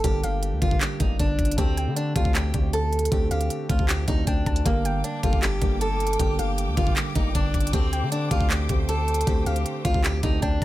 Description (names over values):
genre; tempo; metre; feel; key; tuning
hip hop, trap; 156 BPM; 4/4; half-time; G minor; A4 = 440 Hz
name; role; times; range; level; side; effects
picked old ladder-braced acoustic guitar; melody; 0.0-10.6 s; Bb3 to A4; -28 LUFS; equal; tape echo
felt-muted upright piano; accompaniment; 0.0-10.6 s; D3 to A4; -30 LUFS; right 3 dB; none
long sustained 808-style bass; bass; 0.0-10.6 s; G1 to D3; -26 LUFS; equal; none
trap drum kit; drums; 0.0-10.6 s; handclaps, hi-hat, kick drum; -24 LUFS; equal; none
soft round pluck; second line; 0.2-10.6 s; F5 to A5; -36 LUFS; left 2 dB; chorus, tape echo
clear symphonic string section; sustained chords; 4.7-10.6 s; Bb3 to D6; -35 LUFS; left 2 dB; none
room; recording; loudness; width
studio reverb; none; -21 LUFS; side -15 dB against mid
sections
0.0-10.6 A section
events
none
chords
0.0 Gm; 1.6 D7sus4; 4.7 Gm; 7.7 D7sus4